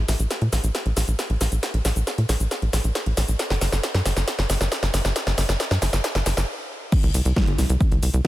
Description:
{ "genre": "uplifting trance", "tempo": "136 BPM", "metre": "4/4", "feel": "straight", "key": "unclear", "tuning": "A4 = 439 Hz", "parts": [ { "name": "tight sequencer bass", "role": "bass", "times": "0.0-8.2 s", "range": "G1 to Bb2", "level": "-22 LUFS", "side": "equal", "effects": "sidechain pumping" }, { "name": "big-room dance drum kit", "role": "drums", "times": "0.1-8.3 s", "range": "crash cymbal, hi-hat, ride cymbal, shaker, snare drum", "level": "-25 LUFS", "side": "equal", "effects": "high-pass filter on hats, high-pass filter on snare, high-pass filter on perc, high-pass filter on cymbals, high-pass filter on room" }, { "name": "electronic kick drum", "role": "drums", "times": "6.9-8.3 s", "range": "none", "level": "-20 LUFS", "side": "equal", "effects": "overdrive" } ], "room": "light reverb", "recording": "none", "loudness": "-20 LUFS", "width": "side -16 dB against mid", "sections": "0.0-6.9 A section; 6.9-8.3 B section", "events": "build-up 0.0-6.9; drum fill 0.0-6.5; stop 6.5-6.9; drop 6.9-8.3", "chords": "none" }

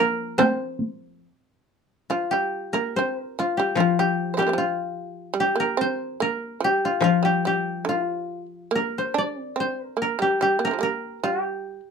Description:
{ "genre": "japanese traditional, Japanese chamber music", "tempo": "73 BPM", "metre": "2/4", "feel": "rubato", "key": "unclear", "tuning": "A4 = 440 Hz", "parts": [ { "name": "koto", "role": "melody", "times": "0.0-11.9 s", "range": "F4 to Bb5", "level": "-24 LUFS", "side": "left 1 dB", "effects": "none" }, { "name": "shamisen", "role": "second line", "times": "0.0-11.8 s", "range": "C3 to C5", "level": "-27 LUFS", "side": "right 5 dB", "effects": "none" }, { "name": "koto", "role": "accompaniment", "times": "0.0-1.2, 3.8-9.6 s", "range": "F3", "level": "-26 LUFS", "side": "left 8 dB", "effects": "none" }, { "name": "taiko ensemble", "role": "percussion", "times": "0.4-1.0 s", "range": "none", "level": "-23 LUFS", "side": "equal", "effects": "none" } ], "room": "moderate studio reverb, RT60 0.5 s", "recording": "dark, warm production", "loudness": "-22 LUFS", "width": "side -6 dB against mid", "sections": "0.0-2.1 A section; 2.1-11.9 B section", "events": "none", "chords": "none" }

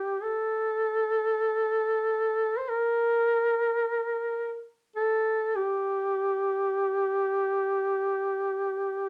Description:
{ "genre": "caucasian folk, Caucasian lament", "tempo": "free time", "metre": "none", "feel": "none", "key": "G minor", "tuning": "A4 = 440 Hz", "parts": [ { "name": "mellow duduk", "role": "solo", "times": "0.0-9.1 s", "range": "G4 to C5", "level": "-28 LUFS", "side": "equal", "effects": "none" } ], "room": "wet club reverb, RT60 0.5 s", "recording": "none", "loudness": "-28 LUFS", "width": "mono", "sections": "0.0-9.1 A section", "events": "slowing down 6.9-9.1", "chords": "none" }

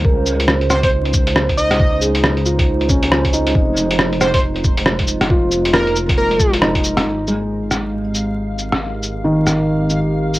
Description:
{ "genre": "future garage", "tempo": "137 BPM", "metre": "4/4", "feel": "swing 61% on 16ths", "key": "unclear", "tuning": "A4 = 440 Hz", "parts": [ { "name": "felt-muted upright piano", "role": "accompaniment", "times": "0.0-10.4 s", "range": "Eb3 to C5", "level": "-20 LUFS", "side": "equal", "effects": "vintage 12-bit sampler grit, sidechain pumping, analog delay" }, { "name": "warbly tape-like pad", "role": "sustained chords", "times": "0.0-10.4 s", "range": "Db3 to C5", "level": "-24 LUFS", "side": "right 2 dB", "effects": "chorus, built-in reverb, sidechain pumping" }, { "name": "dark detuned saw bass", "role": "bass", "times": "0.0-10.4 s", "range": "F1 to Db2", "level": "-22 LUFS", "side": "equal", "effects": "sidechain pumping" }, { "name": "electronic kick drum", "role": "drums", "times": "0.0-6.8 s", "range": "none", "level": "-17 LUFS", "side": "equal", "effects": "none" }, { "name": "lo-fi sampler-style drum kit", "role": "drums", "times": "0.3-10.4 s", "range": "cabasa, hi-hat, rim click", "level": "-18 LUFS", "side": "equal", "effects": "none" }, { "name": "plucky unison lead", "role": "melody", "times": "0.7-6.5 s", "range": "Bb4 to Eb5", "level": "-20 LUFS", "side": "right 1 dB", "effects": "cassette tape, analog delay" }, { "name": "backwards swelling texture", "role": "texture", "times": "7.9-10.4 s", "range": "F5", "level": "-31 LUFS", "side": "left 2 dB", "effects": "built-in reverb" } ], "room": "light reverb", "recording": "home recording on cassette, vinyl crackle", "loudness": "-14 LUFS", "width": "side -17 dB against mid", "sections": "0.0-7.1 A section; 7.1-10.4 B section", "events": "none", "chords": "0.0 Bbm11/Db; 3.5 Fm7; 7.1 Abmaj9" }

